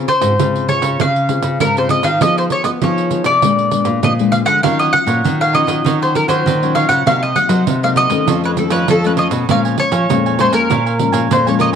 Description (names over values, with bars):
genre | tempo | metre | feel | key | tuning
samba and choro | 99 BPM | 4/4 | straight | Bb minor | A4 = 436 Hz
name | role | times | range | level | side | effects
nylon-string guitar | accompaniment | 0.0-11.8 s | F2 to Ab4 | -20 LUFS | left 11 dB | none
nylon-string guitar | bass | 0.0-11.8 s | Ab2 to Cb4 | -19 LUFS | equal | none
mandolin | melody | 0.1-11.7 s | A4 to Gb5 | -16 LUFS | equal | none
pandeiro | percussion | 0.1-11.8 s | none | -21 LUFS | right 10 dB | none
cavaquinho | accompaniment | 4.6-11.8 s | Eb4 to Ab5 | -23 LUFS | right 12 dB | none
room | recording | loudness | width
light reverb, small room ambience | 1960s-style stereo with parts hard left and right | -12 LUFS | side -7 dB against mid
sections
0.0-11.8 A section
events
none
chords
0.0 Dbmaj7; 2.2 Fm7b5; 3.4 Bb7b9; 4.6 Ebm9; 7.1 Cm7b5; 8.3 Faug7; 9.5 Bbm7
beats
0.40 1.00 1.61 | 2.22 2.82 3.43 4.03 | 4.64 5.25 5.85 6.46 | 7.06 7.67 8.28 8.88 | 9.49 10.09 10.70 11.30